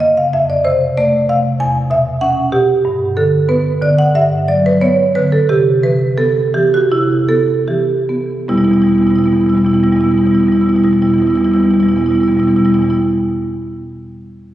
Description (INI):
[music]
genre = classical, contemporary piece for solo marimba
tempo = 73-97 BPM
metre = 4/4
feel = rubato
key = E minor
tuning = A4 = 441 Hz
[part]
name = marimba with medium mallets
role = solo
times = 0.0-13.0 s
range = E2 to G#5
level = -11 LUFS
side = right 1 dB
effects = none
[sound]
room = wet concert hall reverb, RT60 1.9 s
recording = recorded on a phone in the room, studio reverb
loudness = -11 LUFS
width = side -13 dB against mid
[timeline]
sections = 0.0-8.5 A section; 8.5-11.7 B section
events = slowing down 1.6-8.5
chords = 0.3 F; 1.6 E5; 2.9 Gmaj7; 5.5 Cmaj7; 8.5 Em